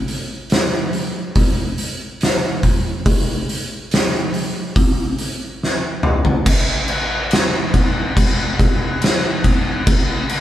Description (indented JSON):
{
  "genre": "metal",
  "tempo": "70 BPM",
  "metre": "4/4",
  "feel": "straight",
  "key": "none",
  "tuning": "none",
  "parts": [
    { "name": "oversized low-tuned drum kit", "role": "drums", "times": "0.1-10.4 s", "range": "crash cymbal, hi-hat, kick drum, snare drum, toms", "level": "-16 LUFS", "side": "equal", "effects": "none" }
  ],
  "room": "little or no reverb",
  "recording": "band playing live in one room",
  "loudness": "-16 LUFS",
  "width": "side -12 dB against mid",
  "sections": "0.0-6.5 A section; 6.5-10.4 B section",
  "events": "drum fill 5.6-6.5",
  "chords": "none",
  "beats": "0.50 1.35 2.20 | 3.05 3.91 4.76 5.61 | 6.46 7.31 8.16 9.02 | 9.87"
}